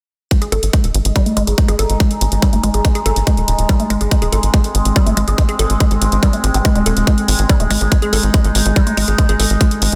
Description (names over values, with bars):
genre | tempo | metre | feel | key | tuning
psychedelic trance | 142 BPM | 4/4 | straight | Ab major | A4 = 440 Hz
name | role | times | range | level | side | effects
overtone-sweeping drone | sustained chords | 1.0-10.0 s | Ab3 to Eb4 | -24 LUFS | equal | chorus, built-in reverb, sidechain pumping
woody wave-folded pluck | riff | 0.3-9.7 s | G3 to A4 | -23 LUFS | equal | chorus, sidechain pumping, dub echo
electronic hi-hat | drums | 0.3-10.0 s | none | -24 LUFS | equal | overdrive, studio reverb
electronic kick drum | drums | 0.3-9.7 s | none | -16 LUFS | equal | overdrive, studio reverb
tight sequencer bass | bass | 0.5-10.0 s | Eb1 to Ab1 | -19 LUFS | equal | none
room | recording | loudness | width
light reverb, digital ambience | dense, heavily limited modern master | -15 LUFS | mono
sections
0.3-10.0 A section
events
none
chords
0.3 Ab5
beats
| 0.31 0.73 1.16 1.58 | 2.00 2.42 2.85 3.27 | 3.69 4.11 4.54 4.96 | 5.38 5.80 6.23 6.65 | 7.07 7.49 7.92 8.34 | 8.76 9.18 9.61